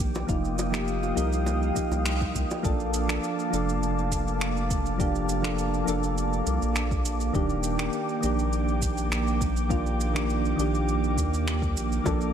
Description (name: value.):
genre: sunset chillout.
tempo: 102 BPM.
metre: 4/4.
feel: straight.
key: Bb major.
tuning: A4 = 440 Hz.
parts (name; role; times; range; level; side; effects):
soft electric-piano-like synth keys; accompaniment; 0.0-12.3 s; Eb3 to A4; -29 LUFS; equal; chorus, auto-pan, digital delay.
airy breathy pad; sustained chords; 0.0-12.3 s; Bb3 to Eb6; -31 LUFS; right 2 dB; chorus.
round analog bass; bass; 0.0-12.3 s; Eb1 to Eb2; -28 LUFS; equal; none.
electronic shaker and finger snaps; drums; 0.1-12.3 s; none; -34 LUFS; right 2 dB; overdrive.
bongos; percussion; 0.2-2.6, 12.1-12.2 s; none; -36 LUFS; equal; none.
electronic kick drum; drums; 0.3-12.2 s; none; -30 LUFS; equal; overdrive.
room: light reverb.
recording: lossy compression artefacts.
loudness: -24 LUFS.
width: side -8 dB against mid.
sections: 0.0-2.6 A section; 2.6-12.3 B section.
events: band accent 2.1.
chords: 0.3 F9sus4; 2.6 Bbmaj7; 7.3 Ebmaj7.